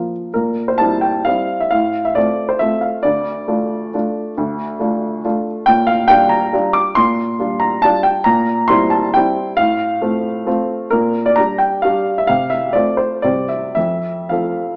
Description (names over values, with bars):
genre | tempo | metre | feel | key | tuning
classical, piano waltz | 107-147 BPM | 3/4 | rubato | F major | A4 = 439 Hz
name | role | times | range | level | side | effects
warm upright piano | solo | 0.0-14.8 s | D2 to D6 | -17 LUFS | equal | none
room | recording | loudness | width
moderate recital hall reverb, RT60 1.7 s | small speaker sound | -17 LUFS | mono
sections
0.0-14.8 A section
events
none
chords
0.4 C7/Bb; 1.7 F/A; 3.0 Dm; 5.7 Gm7/Bb; 8.3 C7/Bb; 9.6 F/A; 10.9 Gm/Bb; 12.3 F/C; 13.2 C; 13.8 F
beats
| 0.35 0.80 1.26 | 1.72 2.16 2.61 | 3.05 3.48 3.94 | 4.38 4.80 5.25 | 5.68 6.09 6.54 | 6.97 7.39 7.83 | 8.26 8.69 9.15 | 9.58 10.02 10.46 | 10.92 11.38 11.84 | 12.29 12.74 13.24 | 13.76 14.31